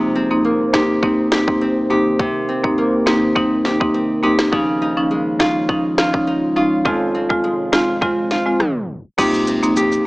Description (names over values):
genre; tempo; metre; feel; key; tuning
dancehall; 103 BPM; 4/4; straight; C phrygian; A4 = 439 Hz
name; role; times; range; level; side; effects
marimba with medium mallets; accompaniment; 0.0-9.8 s; F3 to F4; -18 LUFS; equal; none
deep dark ambient pad; sustained chords; 0.0-10.1 s; C3 to G5; -26 LUFS; equal; chorus, built-in reverb, sidechain pumping
nylon-string guitar; arpeggios; 0.0-10.1 s; F2 to G4; -20 LUFS; equal; none
island pop drum kit; drums; 0.7-9.9 s; crash cymbal, hi-hat, kick drum, rim click, snare drum; -20 LUFS; equal; overdrive
sub bass with octave; bass; 9.2-10.0 s; Bb1 to C2; -35 LUFS; equal; none
maracas; percussion; 9.2-10.0 s; none; -31 LUFS; equal; none
room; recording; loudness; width
light reverb, small room ambience; dry, gritty hardware recording, tape stop, small speaker sound; -15 LUFS; side -22 dB against mid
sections
0.0-9.2 A section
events
tape stop 8.6-9.2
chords
0.0 Cm7; 4.5 Dbadd9; 6.9 Fm; 9.2 Cm7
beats
0.45 1.03 1.61 | 2.19 2.78 3.36 3.94 | 4.52 5.11 5.69 6.27 | 6.85 7.44 8.02 8.60 | 9.19 9.77